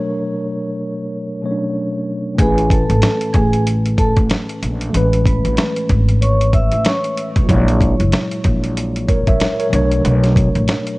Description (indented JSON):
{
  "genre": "hip hop, boom-bap hip-hop",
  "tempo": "94 BPM",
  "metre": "4/4",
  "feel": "swing 58% on 16ths",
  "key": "A major",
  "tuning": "A4 = 441 Hz",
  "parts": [
    { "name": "mellow tine electric piano", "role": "accompaniment", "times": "0.0-11.0 s", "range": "A2 to E5", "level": "-20 LUFS", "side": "equal", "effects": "medium stereo tremolo, cassette tape, high-pass filter, low-pass filter" },
    { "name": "vibraphone with soft mallets", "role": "melody", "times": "2.4-7.1 s", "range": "G#4 to E6", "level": "-22 LUFS", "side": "equal", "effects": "high-pass filter, low-pass filter, cassette tape, tape echo" },
    { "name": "upright bass", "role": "bass", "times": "2.4-10.7 s", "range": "F#1 to B1", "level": "-16 LUFS", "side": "equal", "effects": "none" },
    { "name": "dusty soul sampler-style drum kit", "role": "drums", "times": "2.4-11.0 s", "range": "hi-hat, kick drum, snare drum", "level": "-17 LUFS", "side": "equal", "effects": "cassette tape" }
  ],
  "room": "small room ambience",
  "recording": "home recording on cassette",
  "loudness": "-14 LUFS",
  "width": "side -22 dB against mid",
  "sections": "0.0-2.4 A section; 2.4-11.0 B section",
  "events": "break 0.0-2.4",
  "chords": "0.0 Bm7; 2.4 Amaj7; 7.5 F#7; 9.7 Bm7"
}